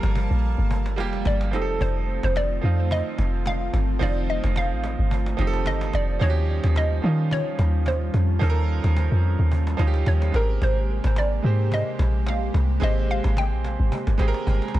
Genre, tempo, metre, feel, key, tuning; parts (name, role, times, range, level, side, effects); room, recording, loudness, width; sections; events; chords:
amapiano; 109 BPM; 4/4; swing 55% on 16ths; A4 = 440 Hz
hollow square pluck; melody; 0.0-13.9 s; A4 to G5; -30 LUFS; equal; chorus, tape echo
bright concert grand piano; accompaniment; 0.0-14.8 s; F3 to Bb5; -30 LUFS; right 6 dB
airy breathy pad; sustained chords; 0.0-14.8 s; C3 to A5; -32 LUFS; equal; chorus
deep log drum bass; bass; 0.0-14.8 s; F1 to Eb3; -22 LUFS; equal
cajon; drums; 0.0-14.8 s; -35 LUFS; equal
small room ambience; -20 LUFS; side -14 dB against mid
0.0-14.8 A section
grand piano fill 14.2-14.8; drum fill 14.5-14.8
0.0 Gm9; 1.5 F7; 6.2 Eb9; 10.3 Abmaj9